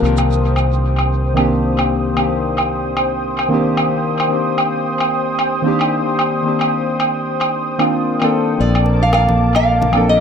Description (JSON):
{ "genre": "sunset chillout", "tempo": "112 BPM", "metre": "4/4", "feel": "swing 57% on 16ths", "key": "C dorian", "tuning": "A4 = 442 Hz", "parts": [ { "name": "soft electric-piano-like synth keys", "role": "accompaniment", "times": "0.0-10.2 s", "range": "Eb3 to A4", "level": "-18 LUFS", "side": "moving between left 4 dB and right 4 dB", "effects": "chorus, auto-pan, tape echo" }, { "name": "lush unison pad", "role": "sustained chords", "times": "0.0-10.2 s", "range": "Bb3 to Eb6", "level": "-21 LUFS", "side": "left 1 dB", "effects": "chorus" }, { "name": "fretless electric bass", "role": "bass", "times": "0.0-10.2 s", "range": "Bb1 to C2", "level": "-18 LUFS", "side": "equal", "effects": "none" }, { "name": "woodblock", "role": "drums", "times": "0.2-10.1 s", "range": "none", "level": "-21 LUFS", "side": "right 1 dB", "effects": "low-pass filter on perc, low-pass filter on hats, low-pass filter on snare, low-pass filter on room, tape echo" }, { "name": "nylon-string guitar", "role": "melody", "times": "8.6-10.2 s", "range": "D5 to F5", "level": "-16 LUFS", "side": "left 1 dB", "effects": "tape echo" }, { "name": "bongos and congas", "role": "percussion", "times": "8.9-10.1 s", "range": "none", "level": "-28 LUFS", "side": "right 1 dB", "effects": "none" } ], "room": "moderate spring reverb, RT60 2.5 s", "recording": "echo-heavy mix", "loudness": "-14 LUFS", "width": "side -7 dB against mid", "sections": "0.0-10.2 A section", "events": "filter sweep on analog synth pad 0.0-10.2", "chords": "0.0 Cm7; 8.6 Bbmaj7" }